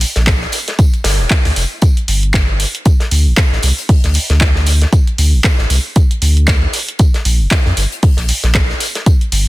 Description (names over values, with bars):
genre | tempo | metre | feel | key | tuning
deep house | 116 BPM | 4/4 | swing 58% on 16ths | D minor | A4 = 441 Hz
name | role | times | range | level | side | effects
warm sub bass | bass | 0.0-9.5 s | D1 to F2 | -13 LUFS | equal | sidechain pumping
gated 80s drum kit | drums | 0.0-9.5 s | hi-hat, snare drum, tambourine | -23 LUFS | left 1 dB | high-pass filter on hats, high-pass filter on snare, high-pass filter on perc, high-pass filter on room
punchy analog drum machine | drums | 0.0-9.4 s | handclaps, hi-hat | -18 LUFS | right 1 dB | none
electronic kick drum | drums | 0.3-9.2 s | none | -11 LUFS | equal | none
room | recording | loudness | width
little or no reverb | dense, heavily limited modern master | -11 LUFS | side -19 dB against mid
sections
0.0-9.5 A section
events
none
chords
none